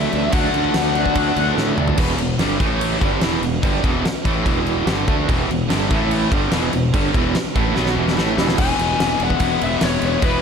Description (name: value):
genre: hard rock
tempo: 146 BPM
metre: 4/4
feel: straight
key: unclear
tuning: A4 = 440 Hz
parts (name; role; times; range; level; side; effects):
- high-gain lead guitar; melody; 0.0-1.5, 8.6-10.4 s; B4 to G#5; -22 LUFS; left 5 dB; distortion, slapback echo
- crunchy overdriven guitar; riff; 0.0-8.6 s; E2 to D4; -24 LUFS; right 13 dB; tremolo
- high-gain distorted guitar; riff; 0.0-10.4 s; E2 to D4; -24 LUFS; left 12 dB; distortion
- sludgy distorted guitar; riff; 0.0-10.4 s; E2 to E4; -25 LUFS; equal; overdrive
- fuzz fingered electric bass; bass; 0.0-10.4 s; E1 to A2; -24 LUFS; equal; overdrive
- huge arena drum kit; drums; 0.1-10.3 s; crash cymbal, kick drum, snare drum, toms; -21 LUFS; equal; none
room: light reverb, small room ambience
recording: none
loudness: -16 LUFS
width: side -6 dB against mid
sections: 0.0-2.0 A section; 2.0-8.6 B section; 8.6-10.4 A section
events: drum fill 1.6-2.0, 7.8-8.6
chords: 0.0 D; 2.0 E5; 2.6 A5; 3.0 E5; 5.9 A5; 6.3 E5; 8.6 E